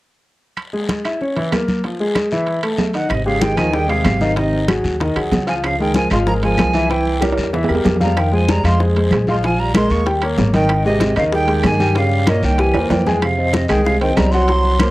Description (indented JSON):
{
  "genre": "Afro-Cuban jazz",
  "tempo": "190 BPM",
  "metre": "4/4",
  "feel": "straight",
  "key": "Ab major",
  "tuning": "A4 = 439 Hz",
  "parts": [
    { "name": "claves", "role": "percussion", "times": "0.6-14.9 s", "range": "none", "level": "-30 LUFS", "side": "right 4 dB", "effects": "none" },
    { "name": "congas", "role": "percussion", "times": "0.6-14.9 s", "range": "none", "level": "-22 LUFS", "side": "equal", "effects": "none" },
    { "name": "guiro", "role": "percussion", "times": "0.6-14.9 s", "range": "none", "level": "-33 LUFS", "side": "left 4 dB", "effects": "none" },
    { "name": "timbales", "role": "percussion", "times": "0.6-14.9 s", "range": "none", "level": "-25 LUFS", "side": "right 4 dB", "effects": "none" },
    { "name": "clear concert grand piano", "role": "accompaniment", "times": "0.7-14.9 s", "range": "Eb3 to Ab5", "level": "-19 LUFS", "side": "left 1 dB", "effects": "cassette tape, plate reverb" },
    { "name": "breathy bright jazz flute", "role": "melody", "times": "2.9-14.9 s", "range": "Eb5 to Db6", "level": "-22 LUFS", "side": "right 2 dB", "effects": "plate reverb" },
    { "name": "breathy trombone", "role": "second line", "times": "2.9-14.9 s", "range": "Bb2 to Bb3", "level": "-23 LUFS", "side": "right 2 dB", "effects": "cassette tape" },
    { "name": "upright bass", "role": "bass", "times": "3.1-14.9 s", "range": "Ab1 to G2", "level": "-19 LUFS", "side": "equal", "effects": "none" },
    { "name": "bongos", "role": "percussion", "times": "3.1-14.9 s", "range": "none", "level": "-25 LUFS", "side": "left 4 dB", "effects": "none" }
  ],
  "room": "moderate studio reverb, RT60 0.6 s",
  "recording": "home recording on cassette",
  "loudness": "-14 LUFS",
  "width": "side -18 dB against mid",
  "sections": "0.6-3.1 A section; 3.1-13.2 B section; 13.2-14.9 C section",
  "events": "drum fill 7.2-8.2, 12.7-13.2",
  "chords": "0.6 E/G#; 1.2 Bbdim/Fb; 1.8 Fm; 2.5 A5; 3.1 Abmaj7; 4.4 Ab7; 5.6 Db6; 6.9 C7; 8.2 Fmadd11; 9.4 Bb5; 10.1 Eb7; 10.7 Abmaj7; 12.0 Gm7b5; 12.6 C7b13; 13.2 Fm7"
}